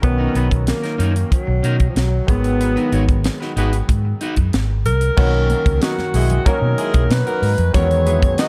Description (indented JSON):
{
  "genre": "polished 1980s jazz-funk pop",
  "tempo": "93 BPM",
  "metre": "4/4",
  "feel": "straight",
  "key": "unclear",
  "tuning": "A4 = 440 Hz",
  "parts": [
    { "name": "breathy alto saxophone", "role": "melody", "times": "0.0-8.5 s", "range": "E#3 to D#5", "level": "-24 LUFS", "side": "equal", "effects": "none" },
    { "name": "warm concert grand piano", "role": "accompaniment", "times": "0.0-8.5 s", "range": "D#3 to A#4", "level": "-28 LUFS", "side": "equal", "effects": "lush chorus" },
    { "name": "electric guitar at the edge of break-up", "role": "riff", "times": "0.0-5.0 s", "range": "C#4 to C#5", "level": "-30 LUFS", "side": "equal", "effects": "subtle chorus" },
    { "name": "vintage muted fingered electric bass", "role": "bass", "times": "0.0-8.3 s", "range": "G#1 to B2", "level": "-20 LUFS", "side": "equal", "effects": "none" },
    { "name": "tight funk drum kit", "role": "drums", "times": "0.0-8.5 s", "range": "crash cymbal, hi-hat, kick drum, snare drum", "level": "-21 LUFS", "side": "equal", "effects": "none" },
    { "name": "warm horn section", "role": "second line", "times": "2.6-8.5 s", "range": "F#3 to C#5", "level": "-30 LUFS", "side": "equal", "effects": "none" },
    { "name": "congas", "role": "percussion", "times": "5.3-8.4 s", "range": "none", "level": "-35 LUFS", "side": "equal", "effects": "none" }
  ],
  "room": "light reverb, studio reverb",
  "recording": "dark, warm production",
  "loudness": "-17 LUFS",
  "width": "mono",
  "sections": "0.0-5.2 A section; 5.2-8.5 B section",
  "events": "band accent 2.6-5.2",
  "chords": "0.0 Bmaj9; 2.3 G#m7; 5.2 Bmaj7; 7.7 Emaj7",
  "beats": "| 0.03 0.68 1.32 1.96 | 2.61 3.25 3.89 4.53 | 5.18 5.82 6.46 7.10 | 7.74 8.38"
}